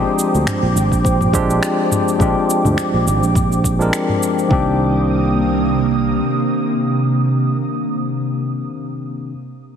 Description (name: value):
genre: sunset chillout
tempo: 104 BPM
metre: 4/4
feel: swing 55% on 16ths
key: C minor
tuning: A4 = 440 Hz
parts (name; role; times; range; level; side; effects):
- barky tine electric piano; accompaniment; 0.0-9.3 s; Eb3 to Bb4; -20 LUFS; moving between left 5 dB and right 6 dB; auto-pan, tape echo
- ethereal airy pad; sustained chords; 0.0-7.6 s; C3 to Eb6; -20 LUFS; right 1 dB; ensemble chorus, built-in reverb, vintage 12-bit sampler grit
- sustaining fretless electric bass; bass; 0.0-6.2 s; Ab1 to D2; -18 LUFS; equal; none
- smooth R&B drum kit; drums; 0.2-4.5 s; cabasa, finger snaps, toms; -23 LUFS; right 1 dB; small room ambience
- electronic kick drum; drums; 0.9-4.6 s; none; -20 LUFS; equal; overdrive, small room ambience
room: moderate lush hall reverb, RT60 2.3 s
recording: heavily compressed radio sound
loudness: -14 LUFS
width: side -8 dB against mid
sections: 0.0-4.5 A section; 4.5-6.8 B section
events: filter sweep on fretless electric bass 0.0-4.5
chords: 0.0 Bb13; 4.5 Cm7